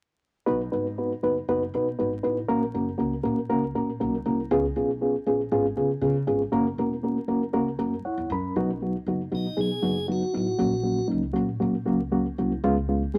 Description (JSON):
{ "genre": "uptempo 1960s-style soul", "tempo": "119 BPM", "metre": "4/4", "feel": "straight", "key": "B major", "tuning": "A4 = 440 Hz", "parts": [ { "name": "mellow reed electric piano", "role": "accompaniment", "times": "0.5-13.2 s", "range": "F#3 to B5", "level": "-27 LUFS", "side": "equal", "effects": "fast tremolo" }, { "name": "upright bass", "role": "bass", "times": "0.5-13.2 s", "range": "E1 to C#3", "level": "-36 LUFS", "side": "equal", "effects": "none" }, { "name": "tonewheel organ", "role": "melody", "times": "9.3-11.1 s", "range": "D#4 to G#4", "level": "-31 LUFS", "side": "equal", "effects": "stopped rotary speaker" } ], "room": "moderate studio reverb, RT60 0.7 s", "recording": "vinyl crackle", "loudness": "-26 LUFS", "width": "mono", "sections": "0.5-8.6 A section; 8.6-13.2 B section", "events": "reed electric piano fill 7.8-8.6", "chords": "0.5 B; 2.5 F#; 4.5 C#7; 6.5 F#; 8.6 B; 10.6 F#/A#; 12.6 C#7" }